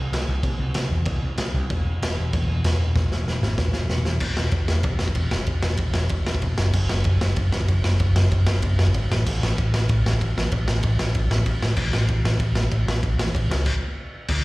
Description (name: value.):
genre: punk rock.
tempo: 190 BPM.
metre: 4/4.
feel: straight.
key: unclear.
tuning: A4 = 440 Hz.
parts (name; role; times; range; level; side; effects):
overdriven picked electric bass; bass; 0.0-14.4 s; E1 to E2; -22 LUFS; equal; none.
raw garage drum kit; drums; 0.1-14.4 s; crash cymbal, kick drum, ride cymbal, snare drum; -24 LUFS; equal; none.
room: little or no reverb.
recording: live gig heard through the venue's PA, recital hall reverb.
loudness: -20 LUFS.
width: side -21 dB against mid.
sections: 0.0-4.2 A section; 4.2-14.3 B section.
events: half time 0.0-4.2; drum fill 3.0-4.2; stop 13.7-14.3.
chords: none.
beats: 0.13 | 0.44 0.76 1.07 1.39 | 1.70 2.02 2.33 2.65 | 2.96 3.28 3.59 3.91 | 4.22 4.54 4.85 5.17 | 5.48 5.80 6.11 6.43 | 6.74 7.06 7.37 7.69 | 8.00 8.32 8.63 8.95 | 9.26 9.58 9.89 10.21 | 10.52 10.84 11.15 11.47 | 11.78 12.10 12.41 12.72 | 13.04 13.35 13.67 13.98 | 14.30.